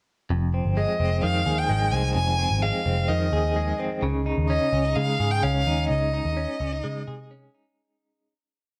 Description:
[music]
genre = jangly indie pop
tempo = 128 BPM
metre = 4/4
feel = straight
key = F minor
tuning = A4 = 439 Hz
[part]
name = direct-recorded clean electric guitar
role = arpeggios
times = 0.3-8.3 s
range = F2 to Ab4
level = -30 LUFS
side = equal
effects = tremolo
[part]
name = vintage muted picked electric bass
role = bass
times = 0.3-7.5 s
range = F1 to Db3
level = -27 LUFS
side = equal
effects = none
[part]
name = rich violin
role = melody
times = 0.8-7.3 s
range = Eb5 to Ab5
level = -29 LUFS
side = equal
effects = none
[sound]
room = light reverb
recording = worn, warbling old tape, cassette tape, warbly pitch drift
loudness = -24 LUFS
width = mono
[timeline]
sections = 0.3-7.8 verse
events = fade-out 5.9-7.8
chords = 0.3 Fm7; 4.0 Dbsus2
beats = | 0.30 0.76 1.23 1.69 | 2.16 2.62 3.09 3.56 | 4.03 4.49 4.96 5.43 | 5.90 6.37 6.84 7.31

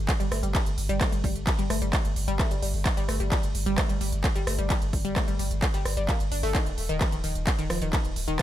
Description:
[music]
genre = driving peak-time techno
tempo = 130 BPM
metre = 4/4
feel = straight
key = unclear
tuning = A4 = 440 Hz
[part]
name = saturated sub bass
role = bass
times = 0.0-8.4 s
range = Eb1 to G1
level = -30 LUFS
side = equal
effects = tube saturation, sidechain pumping, low-pass filter
[part]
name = electronic kick drum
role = drums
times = 0.1-8.4 s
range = none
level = -26 LUFS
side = equal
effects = none
[part]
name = techno drum kit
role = drums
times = 0.1-8.4 s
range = handclaps, hi-hat, ride cymbal, rim click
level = -31 LUFS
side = right 1 dB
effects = none
[part]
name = analog pluck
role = riff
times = 0.2-8.4 s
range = Eb3 to D4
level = -31 LUFS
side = left 1 dB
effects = chorus, phaser, sidechain pumping, digital delay
[sound]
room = little or no reverb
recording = none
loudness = -24 LUFS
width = side -12 dB against mid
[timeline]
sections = 0.0-8.4 A section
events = none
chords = none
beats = 0.09 0.55 | 1.01 1.47 1.93 2.39 | 2.85 3.32 3.78 4.24 | 4.70 5.16 5.62 6.09 | 6.55 7.01 7.47 7.93 | 8.39

